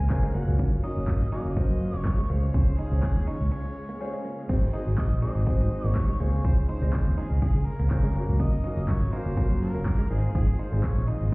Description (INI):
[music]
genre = dance-pop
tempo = 123 BPM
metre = 4/4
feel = straight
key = Db major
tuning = A4 = 440 Hz
[part]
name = clear harmonica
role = melody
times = 0.0-11.3 s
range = Ab4 to Ab5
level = -39 LUFS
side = equal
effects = tape echo
[part]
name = supersaw chords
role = sustained chords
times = 0.0-11.3 s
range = Db3 to F5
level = -37 LUFS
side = equal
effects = sidechain pumping
[part]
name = direct-recorded clean electric guitar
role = riff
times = 0.0-11.3 s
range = Ab3 to Eb4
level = -39 LUFS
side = right 2 dB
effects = lush chorus
[part]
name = vintage muted fingered electric bass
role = bass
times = 0.0-11.3 s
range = Gb1 to Db3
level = -26 LUFS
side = equal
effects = sidechain pumping
[part]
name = clear grand piano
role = accompaniment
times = 0.1-11.3 s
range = Ab3 to Eb5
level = -35 LUFS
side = left 1 dB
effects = sidechain pumping
[part]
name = pop drum kit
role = drums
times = 0.1-11.3 s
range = crash cymbal, handclaps, hi-hat, kick drum, shaker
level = -25 LUFS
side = equal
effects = none
[sound]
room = digital ambience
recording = heard muffled through a wall, stone room reverb, EQ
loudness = -23 LUFS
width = side -26 dB against mid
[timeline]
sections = 0.0-4.5 A section; 4.5-11.3 A section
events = break 3.5-4.5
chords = 0.3 Gbmaj7; 2.3 Dbmaj7; 4.5 Ab7; 6.2 Dbmaj7; 8.2 Gbmaj7; 10.1 Fm7/Ab